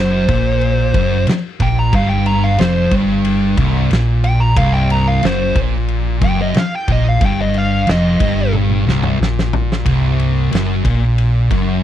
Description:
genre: stoner and doom metal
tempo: 91 BPM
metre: 4/4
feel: straight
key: unclear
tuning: A4 = 440 Hz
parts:
  - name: fuzz lead guitar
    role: melody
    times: 0.0-8.5 s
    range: C5 to Bb5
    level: -19 LUFS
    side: right 1 dB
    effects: distortion, slapback echo
  - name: thick fuzz guitar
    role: riff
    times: 0.0-11.8 s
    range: C2 to Bb2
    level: -17 LUFS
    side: left 5 dB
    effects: distortion
  - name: thick fuzz guitar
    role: riff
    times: 0.0-11.8 s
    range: C2 to Bb2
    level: -19 LUFS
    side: right 8 dB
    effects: distortion
  - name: hollow-body short-scale fingered electric bass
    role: bass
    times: 0.0-11.8 s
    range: C1 to Bb1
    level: -20 LUFS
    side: equal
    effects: overdrive
  - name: oversized low-tuned drum kit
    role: drums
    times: 0.3-11.7 s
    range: kick drum, ride cymbal, snare drum, toms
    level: -20 LUFS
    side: equal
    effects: none
room: little or no reverb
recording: dry, close 1970s-style studio recording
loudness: -13 LUFS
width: side -11 dB against mid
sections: 0.0-9.9 A section; 9.9-11.8 B section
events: lead electric guitar solo 0.0-9.9; drum fill 8.5-9.9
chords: 0.0 C5

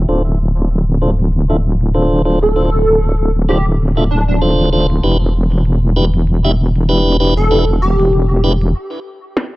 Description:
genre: glitch hop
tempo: 97 BPM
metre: 4/4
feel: swing 56% on 16ths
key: D dorian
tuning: A4 = 438 Hz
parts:
  - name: wobble bass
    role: bass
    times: 0.0-8.7 s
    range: D1 to E1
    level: -13 LUFS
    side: equal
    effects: chorus
  - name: tonewheel organ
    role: stabs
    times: 0.1-8.5 s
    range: D4 to E5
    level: -18 LUFS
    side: equal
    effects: overdrive, stopped rotary speaker, vintage 12-bit sampler grit, low-pass filter, analog delay
  - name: glitchy drum kit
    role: drums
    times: 0.1-9.5 s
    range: hi-hat, snare drum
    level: -17 LUFS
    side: equal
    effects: low-pass filter on hats, small room ambience, low-pass filter on snare
  - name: plucky unison lead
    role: melody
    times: 2.4-8.4 s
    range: D4 to A4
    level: -17 LUFS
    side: right 1 dB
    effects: ensemble chorus, analog delay
room: digital ambience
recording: dry, gritty hardware recording, low-pass filter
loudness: -12 LUFS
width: side -19 dB against mid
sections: 0.0-9.6 A section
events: filter sweep on tonewheel organ 0.0-9.6; filter sweep 0.0-9.6; break 8.7-9.6; drum fill 9.4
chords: 0.1 Dm7; 5.0 Em7

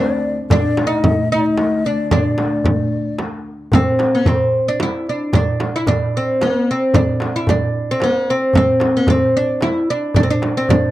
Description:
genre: Arabic maqam ensemble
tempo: 112 BPM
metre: 3/4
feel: straight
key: unclear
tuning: A4 = 441 Hz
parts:
  - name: oud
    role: melody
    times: 0.0-10.9 s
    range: Bb3+50c to E4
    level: -17 LUFS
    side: equal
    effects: none
  - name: breathy ney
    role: second line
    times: 0.0-3.2 s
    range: D5 to Eb5+33c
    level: -23 LUFS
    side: left 5 dB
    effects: none
  - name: dark chamber cello section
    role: drone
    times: 0.0-3.8 s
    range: D2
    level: -25 LUFS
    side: left 2 dB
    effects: none
  - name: darbuka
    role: percussion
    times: 0.2-10.8 s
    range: none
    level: -22 LUFS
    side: equal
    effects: none
  - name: frame drum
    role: percussion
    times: 0.5-10.8 s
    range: none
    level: -18 LUFS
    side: right 1 dB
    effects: none
room: light reverb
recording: dry, close 1970s-style studio recording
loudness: -14 LUFS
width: side -15 dB against mid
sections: 0.0-3.7 A section; 3.7-10.9 B section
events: none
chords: none

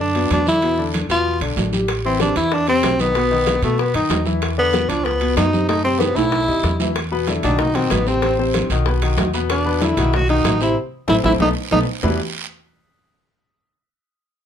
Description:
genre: Afro-Cuban jazz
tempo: 189 BPM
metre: 4/4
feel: straight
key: unclear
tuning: A4 = 438 Hz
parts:
  - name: warm tenor saxophone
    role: melody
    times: 0.0-11.8 s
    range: A3 to F#4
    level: -19 LUFS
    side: equal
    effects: none
  - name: clear grand piano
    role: accompaniment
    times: 0.0-12.2 s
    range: A2 to D#5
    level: -23 LUFS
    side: left 4 dB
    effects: none
  - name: upright bass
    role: bass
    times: 0.0-12.2 s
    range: A1 to B2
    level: -23 LUFS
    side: equal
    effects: none
  - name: guiro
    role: percussion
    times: 0.0-12.1 s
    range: none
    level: -32 LUFS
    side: right 7 dB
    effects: none
  - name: timbales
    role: percussion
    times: 0.1-12.1 s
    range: none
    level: -27 LUFS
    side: right 7 dB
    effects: none
  - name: congas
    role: percussion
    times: 0.2-12.1 s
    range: none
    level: -26 LUFS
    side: equal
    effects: none
  - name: bongos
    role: percussion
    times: 1.9-12.1 s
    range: none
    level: -27 LUFS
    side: left 5 dB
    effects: none
room: light reverb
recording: none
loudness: -16 LUFS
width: side -8 dB against mid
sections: 0.0-7.0 A section; 7.0-12.0 B section; 12.0-13.3 C section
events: drum fill 6.0-7.0, 11.4-12.0; tenor saxophone solo 7.0-12.0; band accent 10.8-12.0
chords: 0.0 Bm; 0.6 E5; 1.9 Am9; 3.2 B; 4.4 E5; 5.1 C#7; 5.7 F#dim; 6.3 B7b9; 7.0 E5; 7.6 B7; 8.9 B; 9.5 E5; 10.1 B7; 10.8 Am; 11.4 B7; 12.0 Em7

